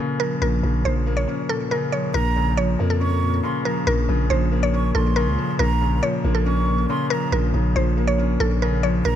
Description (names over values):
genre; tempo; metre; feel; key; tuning
hip hop; 139 BPM; 4/4; half-time; Bb harmonic minor; A4 = 445 Hz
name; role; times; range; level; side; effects
mallet-like synth pluck; melody; 0.0-9.2 s; A4 to Db5; -26 LUFS; right 1 dB; chorus, low-pass filter, ping-pong delay
warm concert grand piano; accompaniment; 0.0-9.2 s; Bb2 to Db4; -24 LUFS; left 2 dB; low-pass filter
growling 808-style bass; bass; 0.4-9.2 s; Bb1 to F2; -21 LUFS; equal; none
breathy concert flute; second line; 2.1-9.2 s; Bb5 to Db6; -30 LUFS; right 7 dB; ping-pong delay
room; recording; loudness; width
studio reverb; none; -19 LUFS; side -10 dB against mid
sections
0.0-2.1 A section; 2.1-9.2 B section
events
break 1.3-2.1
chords
0.0 Bbm